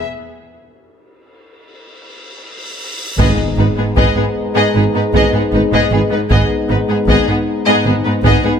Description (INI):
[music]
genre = cinematic, epic orchestral film score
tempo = 77 BPM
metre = 4/4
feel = straight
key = G# minor from 3.2 s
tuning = A4 = 440 Hz
[part]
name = rich symphonic violin section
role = melody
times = 0.0-8.5 s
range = G#4 to D#5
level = -20 LUFS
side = left 3 dB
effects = none
[part]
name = dark French horn section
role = sustained chords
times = 0.0-8.6 s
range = B3 to D#4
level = -22 LUFS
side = left 5 dB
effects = none
[part]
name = cymbal swell and impact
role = sound effects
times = 1.7-6.3 s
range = none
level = -27 LUFS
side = equal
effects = none
[part]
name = warm symphonic violin section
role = second line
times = 3.2-8.5 s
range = B3 to G#4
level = -21 LUFS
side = left 2 dB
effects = none
[part]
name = rich symphonic viola section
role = accompaniment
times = 3.2-8.5 s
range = B3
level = -21 LUFS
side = right 1 dB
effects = none
[part]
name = warm trombone section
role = sustained chords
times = 3.2-8.6 s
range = G#2 to G#3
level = -20 LUFS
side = left 1 dB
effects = none
[part]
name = dark symphonic double bass section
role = bass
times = 3.2-8.3 s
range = G#1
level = -21 LUFS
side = right 2 dB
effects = none
[part]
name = dark tuba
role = bass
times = 3.2-8.3 s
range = G#1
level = -23 LUFS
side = right 4 dB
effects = none
[part]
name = rich symphonic cello section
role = bass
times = 3.2-8.5 s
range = G#2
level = -20 LUFS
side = right 2 dB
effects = none
[part]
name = taiko ensemble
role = drums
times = 3.2-8.6 s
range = none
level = -19 LUFS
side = equal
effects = none
[part]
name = timpani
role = percussion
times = 3.2-4.3 s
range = G#2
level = -23 LUFS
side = equal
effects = none
[sound]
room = light reverb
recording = close, detailed microphones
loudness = -12 LUFS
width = side -7 dB against mid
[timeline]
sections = 0.0-3.2 A section; 3.2-8.6 B section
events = break 0.1-3.2; cymbal swell 1.7-3.2; impact 3.2-6.3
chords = 0.0 N.C.; 3.2 G#m